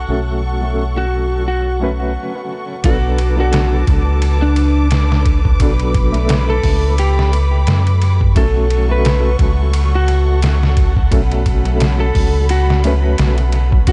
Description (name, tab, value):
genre	trip hop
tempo	87 BPM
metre	4/4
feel	swing 57% on 16ths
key	B minor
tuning	A4 = 441 Hz
part	warm upright piano	accompaniment	0.0-13.9 s	F#3 to B4	-25 LUFS	equal	tremolo, tape echo
part	dark studio string section	sustained chords	0.0-13.9 s	A4 to D6	-29 LUFS	equal	none
part	deep dub fingered electric bass	bass	0.0-13.9 s	B1 to F#2	-17 LUFS	equal	none
part	backwards swelling texture	texture	0.0-2.1 s	F#5	-38 LUFS	equal	none
part	electric slide guitar	melody	1.0-13.9 s	D4 to B4	-24 LUFS	equal	tape echo
part	trip hop sampler-style drum kit	drums	2.8-13.9 s	hi-hat, kick drum, ride cymbal, snare drum	-20 LUFS	equal	none
room	little or no reverb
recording	echo-heavy mix, nothing above 10.5 kHz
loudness	-15 LUFS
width	mono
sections	0.0-2.8 A section; 2.8-13.9 B section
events	break 2.2-2.8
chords	0.0 F#m/B; 2.8 Bm7; 8.4 F#m/B